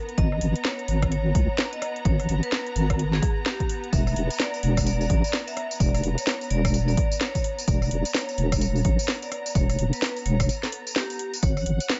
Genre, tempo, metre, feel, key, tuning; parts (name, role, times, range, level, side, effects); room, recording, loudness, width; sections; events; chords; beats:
UK garage, two-step garage; 128 BPM; 4/4; swing 61% on 16ths; A4 = 437 Hz
vibraphone with hard mallets; melody; 0.0-12.0 s; G4 to E5; -35 LUFS; equal; delay
rich symphonic violin section; sustained chords; 0.0-12.0 s; B3 to A#5; -38 LUFS; equal; sidechain pumping
garage drum kit; drums; 0.1-12.0 s; hi-hat, rim click, snare drum, tambourine; -31 LUFS; equal
deep soft wobble bass; bass; 0.2-11.8 s; E1 to C#2; -26 LUFS; equal; chorus
electronic kick drum; drums; 0.2-11.5 s; -27 LUFS; equal
little or no reverb; nothing above 7.8 kHz; -25 LUFS; mono
0.0-12.0 A section
break 10.5-11.4
0.0 G#madd9; 3.7 E5; 11.4 G#7sus4
| 0.18 0.65 1.11 1.58 | 2.05 2.52 2.99 3.46 | 3.93 4.40 4.87 5.33 | 5.80 6.27 6.74 7.21 | 7.68 8.15 8.62 9.08 | 9.55 10.02 10.49 10.96 | 11.43 11.90